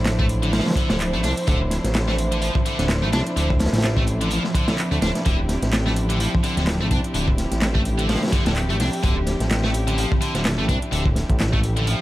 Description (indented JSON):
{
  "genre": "breakbeat, breaks",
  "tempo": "127 BPM",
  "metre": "4/4",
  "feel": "swing 56% on 16ths",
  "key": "D minor",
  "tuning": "A4 = 440 Hz",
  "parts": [
    { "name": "warm chamber string section", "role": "sustained chords", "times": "0.0-12.0 s", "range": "F3 to C5", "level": "-26 LUFS", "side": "equal", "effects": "sidechain pumping" },
    { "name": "fat analog bass", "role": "bass", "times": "0.0-12.0 s", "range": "D1 to D2", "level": "-23 LUFS", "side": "equal", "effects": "tube saturation" },
    { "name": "crunchy breakbeat drum kit", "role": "drums", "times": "0.1-12.0 s", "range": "hi-hat, kick drum, snare drum", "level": "-23 LUFS", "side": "equal", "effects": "none" },
    { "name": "house drum kit", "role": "drums", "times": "0.1-12.0 s", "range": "handclaps, hi-hat", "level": "-32 LUFS", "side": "right 1 dB", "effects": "none" },
    { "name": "high-gain distorted guitar", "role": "riff", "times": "0.2-12.0 s", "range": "D3 to D4", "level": "-27 LUFS", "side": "equal", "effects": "distortion, dub echo" }
  ],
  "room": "small room ambience",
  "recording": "vinyl crackle",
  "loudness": "-18 LUFS",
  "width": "side -16 dB against mid",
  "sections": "0.0-12.0 A section",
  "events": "none",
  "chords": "0.0 Dm9"
}